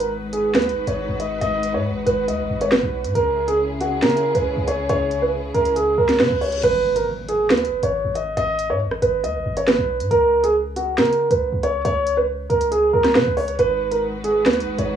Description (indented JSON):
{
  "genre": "hip hop, drill",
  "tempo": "138 BPM",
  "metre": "4/4",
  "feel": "half-time",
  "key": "G# minor",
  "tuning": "A4 = 445 Hz",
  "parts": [
    { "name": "dark baby grand piano", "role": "melody", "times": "0.0-15.0 s", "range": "F#4 to D#5", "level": "-19 LUFS", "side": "right 2 dB", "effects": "cassette tape" },
    { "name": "warm symphonic string section", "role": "sustained chords", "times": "0.0-6.6, 13.6-15.0 s", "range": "C#3 to B4", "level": "-28 LUFS", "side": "left 1 dB", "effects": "cassette tape" },
    { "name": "hard-hitting 808-style bass", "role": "bass", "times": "0.0-15.0 s", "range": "G#1 to C#3", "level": "-28 LUFS", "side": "equal", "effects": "none" },
    { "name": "drill drum kit", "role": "drums", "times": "0.0-14.9 s", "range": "crash cymbal, finger snaps, hi-hat, rim click, snare drum", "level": "-22 LUFS", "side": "equal", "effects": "none" },
    { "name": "reverse cymbal and impact", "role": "sound effects", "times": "6.0-8.4 s", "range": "none", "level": "-35 LUFS", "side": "equal", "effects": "none" }
  ],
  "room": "light reverb",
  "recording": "home recording on cassette, small room ambience",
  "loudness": "-17 LUFS",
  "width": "side -9 dB against mid",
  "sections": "0.0-6.6 A section; 6.6-15.0 B section",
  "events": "reverse cymbal 6.0-6.6; impact 6.6-8.4",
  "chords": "0.0 G#m7; 3.2 C#m; 6.6 G#m; 10.1 G#sus4/C# (rootless); 13.6 G#m7",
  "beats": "0.11 0.55 0.98 | 1.42 1.85 2.28 2.72 | 3.15 3.59 4.02 4.46 | 4.89 5.33 5.76 6.20 | 6.63 7.07 7.50 7.94 | 8.37 8.81 9.24 9.68 | 10.11 10.54 10.98 11.41 | 11.85 12.28 12.72 13.15 | 13.59 14.02 14.46 14.89"
}